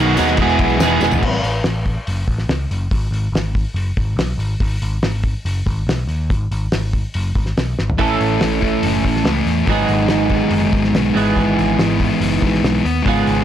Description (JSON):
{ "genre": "indie rock", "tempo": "142 BPM", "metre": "4/4", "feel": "straight", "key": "unclear", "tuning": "A4 = 440 Hz", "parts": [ { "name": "string machine, cellos", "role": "sustained chords", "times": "0.0-1.2 s", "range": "B4 to D#6", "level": "-27 LUFS", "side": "left 1 dB", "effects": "ensemble chorus" }, { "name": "thick fuzz guitar", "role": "riff", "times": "0.0-1.2, 8.0-13.4 s", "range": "G#2 to E#4", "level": "-19 LUFS", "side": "left 7 dB", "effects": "distortion" }, { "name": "twelve-string electric guitar", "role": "riff", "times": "0.0-1.2, 8.0-13.4 s", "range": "E2 to A4", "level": "-18 LUFS", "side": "right 9 dB", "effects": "wide subtle chorus, slapback echo" }, { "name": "overdriven picked electric bass", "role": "bass", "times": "0.0-13.4 s", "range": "E1 to E2", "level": "-20 LUFS", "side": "equal", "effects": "tube saturation" }, { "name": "tambourine", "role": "percussion", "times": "0.1-1.2 s", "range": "none", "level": "-35 LUFS", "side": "left 8 dB", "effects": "none" }, { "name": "cloth-damped thuddy drum kit", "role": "drums", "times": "0.2-13.4 s", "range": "crash cymbal, hi-hat, kick drum, snare drum, toms", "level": "-21 LUFS", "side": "equal", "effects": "none" } ], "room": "light reverb", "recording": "blown-out, overdriven recording, overdrive", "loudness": "-15 LUFS", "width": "side -10 dB against mid", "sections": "0.0-1.2 A section; 1.2-13.4 B section", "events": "drum fill 1.0, 7.8", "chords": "0.4 Emaj7; 1.2 N.C.; 8.0 A; 9.7 G#m7; 11.2 E/G#" }